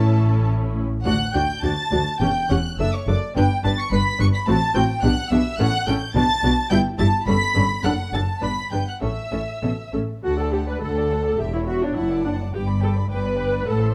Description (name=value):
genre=quick classical-period movement for string orchestra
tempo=97-108 BPM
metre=2/4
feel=rubato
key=D major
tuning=A4 = 442 Hz
part: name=warm studio violin section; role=melody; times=0.0-13.9 s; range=E5 to C#7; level=-32 LUFS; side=equal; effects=none
part: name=rich chamber violin section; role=second line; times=0.0-13.9 s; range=A4 to C#6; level=-29 LUFS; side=equal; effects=none
part: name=warm symphonic viola section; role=accompaniment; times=0.0-13.9 s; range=C4 to B4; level=-28 LUFS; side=equal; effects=none
part: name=rich studio cello section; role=bass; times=0.0-13.9 s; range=D2 to B2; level=-28 LUFS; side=equal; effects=none
part: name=warm studio double bass section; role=bass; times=0.0-13.9 s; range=E1 to D2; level=-26 LUFS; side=equal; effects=none
room=moderate large studio reverb, RT60 1.2 s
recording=dark, warm production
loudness=-21 LUFS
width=mono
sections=0.0-1.1 A section; 1.1-10.2 B section; 10.2-13.9 C section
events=none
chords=0.0 A; 1.1 D; 2.2 C#dim/E; 2.8 D/F#; 3.4 G; 4.5 F#dim/A; 5.0 G/B; 5.6 A; 6.2 Bm; 6.7 Em/G; 7.3 A7/G; 7.8 D/F#; 8.4 G; 9.0 A; 10.2 D; 11.4 C#dim/E; 12.0 D/F#; 12.5 G